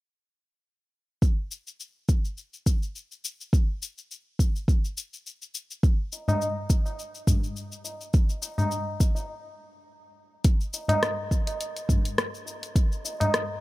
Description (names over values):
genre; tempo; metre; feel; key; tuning
downtempo; 104 BPM; 4/4; swing 55% on 16ths; none; none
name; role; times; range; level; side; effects
deep house drum kit; drums; 1.2-13.5 s; cabasa, hi-hat, rim click; -31 LUFS; left 2 dB; none
electronic kick drum; drums; 1.2-12.9 s; none; -22 LUFS; equal; none
tabla; percussion; 6.1-13.3 s; none; -28 LUFS; equal; none
room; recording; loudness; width
digital ambience; none; -24 LUFS; side -19 dB against mid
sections
1.2-10.4 A section; 10.4-13.6 B section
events
stop 9.3-10.4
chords
none